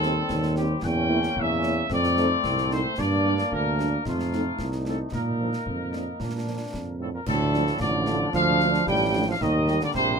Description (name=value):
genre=military-style march for wind band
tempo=112 BPM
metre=2/4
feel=straight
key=unclear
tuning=A4 = 439 Hz
part: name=warm trumpet section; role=melody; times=0.0-10.2 s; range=F4 to G5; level=-27 LUFS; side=left 2 dB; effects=none
part: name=mellow French horn section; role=accompaniment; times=0.0-9.8 s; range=F3 to G4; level=-30 LUFS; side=equal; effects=none
part: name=bright trombone section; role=sustained chords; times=0.0-10.2 s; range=F3 to Eb4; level=-32 LUFS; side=left 2 dB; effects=none
part: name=warm tuba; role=bass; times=0.0-10.2 s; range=A1 to Bb2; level=-26 LUFS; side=right 2 dB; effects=none
part: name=concert snare drum, concert bass drum and clash cymbals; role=drums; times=0.0-10.1 s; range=none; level=-36 LUFS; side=left 1 dB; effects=none
part: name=warm euphonium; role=second line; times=7.0-10.2 s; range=A2 to G3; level=-27 LUFS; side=right 4 dB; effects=none
room=light reverb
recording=close, detailed microphones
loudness=-22 LUFS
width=side -6 dB against mid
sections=0.0-7.3 A section; 7.3-10.2 B section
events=none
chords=0.0 Cm/Eb; 0.8 Edim7; 1.9 F7; 3.0 Gm; 4.1 F7; 5.1 Bb; 7.3 Dm; 9.4 Eb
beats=0.30 | 0.84 1.37 | 1.91 2.45 | 2.98 3.52 | 4.05 4.59 | 5.13 5.67 | 6.20 6.74 | 7.27 7.81 | 8.35 8.88 | 9.42 9.95